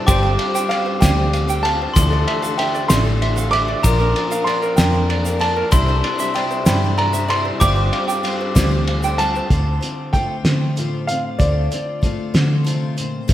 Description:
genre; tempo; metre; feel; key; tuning
indie folk with a building arrangement; 64 BPM (dotted quarters); 6/8; straight; D minor; A4 = 438 Hz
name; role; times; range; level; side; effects
dark upright piano; melody; 0.0-12.1 s; D5 to D6; -23 LUFS; right 1 dB; slapback echo
glockenspiel with rubber mallets; second line; 0.0-9.1 s; Bb5 to D6; -26 LUFS; left 5 dB; slapback echo, tape echo
clear baby grand piano; accompaniment; 0.0-9.5 s; G1 to D5; -30 LUFS; left 2 dB; slapback echo
picked twelve-string acoustic guitar; accompaniment; 0.0-13.3 s; A2 to C5; -28 LUFS; left 4 dB; slapback echo
tonewheel organ; sustained chords; 0.0-9.5 s; C3 to G4; -29 LUFS; equal; slow rotary speaker, chorus vibrato
ukulele; arpeggios; 0.0-9.5 s; E4 to G5; -26 LUFS; right 5 dB; slapback echo
vintage muted fingered electric bass; bass; 0.1-13.3 s; G1 to D3; -19 LUFS; equal; none
cloth-damped thuddy drum kit; drums; 0.1-13.3 s; hi-hat, kick drum, ride cymbal, snare drum; -21 LUFS; equal; none
tube shaker; percussion; 0.1-9.4 s; none; -32 LUFS; right 5 dB; none
fingerpicked steel-string acoustic guitar; accompaniment; 9.5-13.3 s; A2 to F4; -28 LUFS; left 2 dB; slapback echo
room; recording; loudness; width
moderate concert hall reverb, RT60 2.1 s; big arena sound; -16 LUFS; side -12 dB against mid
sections
0.0-9.5 A section; 9.5-13.3 B section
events
none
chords
0.1 G7sus4; 2.0 Dmadd9; 3.8 Bb; 5.7 Cadd9; 7.6 G7sus4; 9.5 Dm7

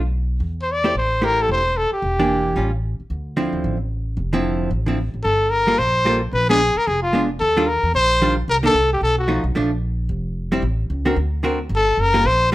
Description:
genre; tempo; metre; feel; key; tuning
jazz, small-group swing and bop; 223 BPM; 4/4; swing 59% on 8ths; D minor, G minor from 5.3 s; A4 = 440 Hz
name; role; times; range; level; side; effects
upright bass; bass; 0.0-12.5 s; E1 to E2; -23 LUFS; equal; none
clear trumpet; melody; 0.6-2.7, 5.2-9.4, 11.8-12.5 s; F4 to D5; -18 LUFS; left 1 dB; none
archtop guitar, miked and amplified; accompaniment; 0.8-12.5 s; D3 to C5; -21 LUFS; right 1 dB; none
room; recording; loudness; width
light reverb; none; -17 LUFS; side -16 dB against mid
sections
0.0-5.3 A section; 5.3-12.5 B section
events
none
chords
0.4 C6/E; 2.0 Em7b5; 2.6 A7b13; 3.1 Dm9; 5.3 Gm9; 6.3 Bb7b9; 7.4 Ebmaj9; 8.5 Cm9; 9.0 B7#11; 9.6 Bbmaj7; 10.6 Am; 11.2 Daug7; 11.7 Gmadd9

